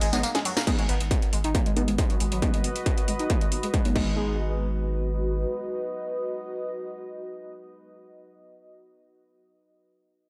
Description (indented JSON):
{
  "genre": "driving peak-time techno",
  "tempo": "137 BPM",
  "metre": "4/4",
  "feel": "straight",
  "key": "G# minor",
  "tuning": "A4 = 440 Hz",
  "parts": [
    { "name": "overdriven synth lead", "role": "riff", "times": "0.0-4.4 s", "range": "F#3 to D#4", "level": "-34 LUFS", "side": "equal", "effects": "phaser, sidechain pumping, digital delay" },
    { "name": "saturated sub bass", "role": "bass", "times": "0.0-5.4 s", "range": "G#1", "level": "-31 LUFS", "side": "equal", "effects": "overdrive, sidechain pumping, low-pass filter" },
    { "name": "techno drum kit", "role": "drums", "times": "0.0-4.0 s", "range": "crash cymbal, hi-hat, ride cymbal, snare drum, tambourine", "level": "-34 LUFS", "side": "equal", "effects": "sidechain pumping on hats, sidechain pumping on perc, sidechain pumping on cymbals" },
    { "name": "rave stab", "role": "stabs", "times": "0.1-8.1 s", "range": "G#3 to D#4", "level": "-35 LUFS", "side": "equal", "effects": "chorus, built-in reverb, sidechain pumping, digital delay" },
    { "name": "electronic kick drum", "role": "drums", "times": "0.7-4.0 s", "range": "none", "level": "-27 LUFS", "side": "equal", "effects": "distortion" },
    { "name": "deep dark ambient pad", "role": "texture", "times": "1.9-8.4 s", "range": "F#4 to D#5", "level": "-36 LUFS", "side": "equal", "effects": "chorus, built-in reverb, sidechain pumping" }
  ],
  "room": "light reverb",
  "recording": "none",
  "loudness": "-26 LUFS",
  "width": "mono",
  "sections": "0.7-4.2 A section; 4.2-7.7 B section",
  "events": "drum fill 0.3-0.7; band accent 0.6; filter sweep on analog synth lead 0.7-4.2; filter sweep on synth stab 0.7-4.2",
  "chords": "0.0 G#m",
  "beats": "0.23 | 0.67 1.11 1.55 1.99 | 2.42 2.86 3.30 3.74 | 4.17 4.61 5.05 5.49 | 5.93 6.36 6.80 7.24"
}